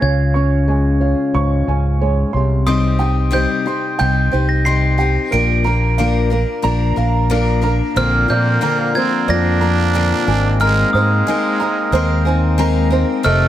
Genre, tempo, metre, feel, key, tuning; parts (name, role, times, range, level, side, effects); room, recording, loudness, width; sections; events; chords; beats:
folk; 91 BPM; 4/4; straight; A4 = 440 Hz
glockenspiel with soft plastic mallets; melody; 0.0-13.5 s; Eb6 to D7; -21 LUFS; right 1 dB; analog delay
fingerpicked old ladder-braced acoustic guitar; accompaniment; 0.0-5.3 s; Ab2 to G4; -22 LUFS; left 2 dB; analog delay
dark upright piano; arpeggios; 0.0-13.5 s; Bb4 to Db6; -23 LUFS; right 6 dB; analog delay
fingered electric bass; bass; 0.0-13.5 s; F1 to Bb2; -16 LUFS; equal
picked steel-string acoustic guitar; accompaniment; 2.7-13.5 s; F2 to Bb4; -20 LUFS; left 6 dB; analog delay
growling trumpet; second line; 8.0-13.5 s; Ab3 to D4; -22 LUFS; right 6 dB
pedal harmonium; sustained chords; 8.0-13.5 s; D3 to A4; -26 LUFS; left 2 dB
light reverb, small room ambience; echo-heavy mix; -14 LUFS; side -12 dB against mid
0.0-8.0 A section; 8.0-13.5 B section
0.0 Db; 2.3 Cm; 5.3 Bb; 8.0 Bbadd9; 10.3 Abadd9
| 0.02 0.68 1.35 2.01 | 2.67 3.33 4.00 4.66 | 5.32 5.98 6.64 7.30 | 7.96 8.62 9.28 9.94 | 10.60 11.26 11.92 12.58 | 13.24